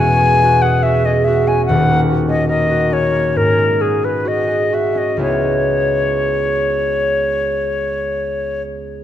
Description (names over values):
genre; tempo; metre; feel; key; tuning
classical, impressionist duo for flute and harp; 59-74 BPM; 4/4; rubato; C# dorian; A4 = 441 Hz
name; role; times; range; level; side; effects
bright silver concert flute; melody; 0.0-8.6 s; G#4 to G#5; -17 LUFS; left 2 dB; none
concert harp; accompaniment; 0.0-9.0 s; D#1 to A#4; -17 LUFS; right 1 dB; none
room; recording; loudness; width
moderate scoring stage reverb, RT60 1.9 s; dark, warm production; -14 LUFS; side -11 dB against mid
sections
0.0-9.0 A section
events
none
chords
0.0 E69; 1.7 D#m7; 3.4 G#7sus4; 5.2 C#m7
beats
0.84 | 1.69 2.51 3.36 4.27 | 5.22 6.23 7.23 8.19